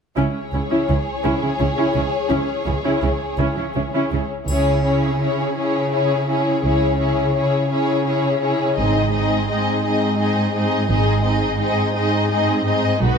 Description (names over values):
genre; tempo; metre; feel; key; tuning
cinematic, epic orchestral film score; 56 BPM (dotted quarters); 6/8; straight; C# minor; A4 = 440 Hz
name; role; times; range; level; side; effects
warm symphonic violin section; second line; 0.2-13.2 s; F#4 to D#5; -22 LUFS; left 5 dB; none
warm symphonic viola section; accompaniment; 0.2-13.2 s; B3 to E4; -22 LUFS; right 1 dB; none
rich chamber double bass section; bass; 0.2-13.2 s; G#1 to C#2; -24 LUFS; right 3 dB; none
warm symphonic cello section; bass; 0.2-13.2 s; G#2 to C#3; -23 LUFS; right 2 dB; none
triangle; percussion; 4.5-5.9 s; none; -37 LUFS; left 5 dB; none
room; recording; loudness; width
moderate scoring stage reverb, RT60 1.8 s; none; -17 LUFS; side -6 dB against mid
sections
0.2-4.5 A section; 4.5-13.2 B section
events
build-up 4.5-13.2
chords
0.2 C#m; 8.8 G#